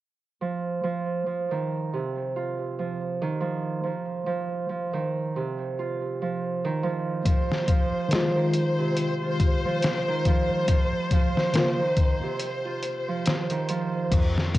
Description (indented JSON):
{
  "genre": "trip hop",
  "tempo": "70 BPM",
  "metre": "4/4",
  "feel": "swing 57% on 16ths",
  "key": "unclear",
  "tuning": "A4 = 440 Hz",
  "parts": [
    { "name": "Celtic harp", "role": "arpeggios", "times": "0.4-14.6 s", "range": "C3 to F4", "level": "-27 LUFS", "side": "right 3 dB", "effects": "low-pass filter, cassette tape, tape echo" },
    { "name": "rich chamber violin section", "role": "sustained chords", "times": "7.3-14.1 s", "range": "C5", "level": "-31 LUFS", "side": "left 2 dB", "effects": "cassette tape" },
    { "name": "trip hop sampler-style drum kit", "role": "drums", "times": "7.3-14.6 s", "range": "crash cymbal, hi-hat, kick drum, snare drum", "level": "-24 LUFS", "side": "left 1 dB", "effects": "cassette tape" },
    { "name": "tine electric piano", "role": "accompaniment", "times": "8.1-11.8 s", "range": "Db3 to F4", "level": "-27 LUFS", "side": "left 2 dB", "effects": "medium stereo tremolo, vintage 12-bit sampler grit, cassette tape, tape echo" },
    { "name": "upright bass", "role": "bass", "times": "14.1-14.6 s", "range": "F2", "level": "-26 LUFS", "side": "left 1 dB", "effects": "tube saturation" }
  ],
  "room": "light reverb, studio reverb",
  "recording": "home recording on cassette",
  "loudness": "-24 LUFS",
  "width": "side -15 dB against mid",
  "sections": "0.4-14.1 A section",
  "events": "none",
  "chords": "0.4 Cmadd11; 7.3 Fm7; 10.7 N.C."
}